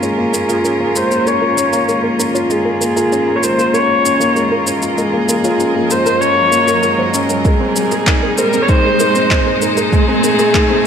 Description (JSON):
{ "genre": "piano and strings electronica", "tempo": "97 BPM", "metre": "4/4", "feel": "straight", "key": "Bb minor", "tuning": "A4 = 440 Hz", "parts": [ { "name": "dark viola", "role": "melody", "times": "0.0-10.9 s", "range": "Ab4 to Db5", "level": "-16 LUFS", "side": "left 1 dB", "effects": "low-pass filter, digital delay" }, { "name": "clear string quartet", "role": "sustained chords", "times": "0.0-10.9 s", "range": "Bb2 to Eb5", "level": "-21 LUFS", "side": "equal", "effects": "none" }, { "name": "soft round pluck", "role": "arpeggios", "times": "0.0-10.8 s", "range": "Bb4 to Bb5", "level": "-24 LUFS", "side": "right 1 dB", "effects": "none" }, { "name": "felt-muted upright piano", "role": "riff", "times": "0.0-10.9 s", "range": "Ab3 to Eb5", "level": "-18 LUFS", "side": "equal", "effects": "digital delay" }, { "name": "electronic shaker and handclaps", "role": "drums", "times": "0.0-10.7 s", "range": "none", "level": "-20 LUFS", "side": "equal", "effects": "none" }, { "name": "riser", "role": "sound effects", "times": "0.5-10.9 s", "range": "none", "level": "-23 LUFS", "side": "right 1 dB", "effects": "none" }, { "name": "electronic kick drum", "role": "drums", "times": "7.4-10.7 s", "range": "none", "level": "-15 LUFS", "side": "equal", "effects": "none" } ], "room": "moderate scoring stage reverb, RT60 1.6 s, small room ambience", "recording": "none", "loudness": "-12 LUFS", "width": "side -7 dB against mid", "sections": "0.0-10.9 A section", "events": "build-up 0.0-10.9; filter sweep on viola 0.0-10.9; riser 0.5-10.9", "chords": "0.0 Bbm7; 7.5 Ab/Bb" }